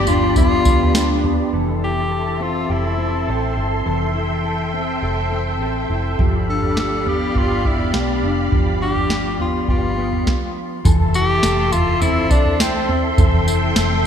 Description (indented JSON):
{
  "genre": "dream pop",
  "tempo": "103 BPM",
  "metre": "4/4",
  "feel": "straight",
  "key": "F lydian",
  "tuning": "A4 = 441 Hz",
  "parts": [
    { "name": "breathy tenor saxophone", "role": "melody", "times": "0.0-13.0 s", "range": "C4 to A4", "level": "-22 LUFS", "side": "left 1 dB", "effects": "digital delay" },
    { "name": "soft string machine", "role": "sustained chords", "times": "0.0-14.1 s", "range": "G4 to C6", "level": "-25 LUFS", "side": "right 1 dB", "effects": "ensemble chorus" },
    { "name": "mellow electric guitar", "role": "arpeggios", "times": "0.0-14.1 s", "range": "E3 to A4", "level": "-22 LUFS", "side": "left 2 dB", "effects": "ensemble chorus, digital delay" },
    { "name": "vintage muted fingered electric bass", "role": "bass", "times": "0.0-14.1 s", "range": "F1 to D2", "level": "-23 LUFS", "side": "equal", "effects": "none" },
    { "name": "soft vintage rhythm box", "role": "drums", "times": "0.1-1.4, 6.2-13.9 s", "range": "kick drum, snare drum, tambourine, toms", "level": "-19 LUFS", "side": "right 1 dB", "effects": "gated reverb" }
  ],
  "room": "moderate lush hall reverb, RT60 2.8 s",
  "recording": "bright 1980s-style digital production",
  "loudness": "-16 LUFS",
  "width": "side -8 dB against mid",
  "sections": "0.0-1.5 A section; 1.5-10.8 B section; 10.8-14.1 A section",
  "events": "stop 10.3-10.8",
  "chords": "0.0 G7; 1.5 Fmaj7; 6.2 G7; 10.8 Fmaj7"
}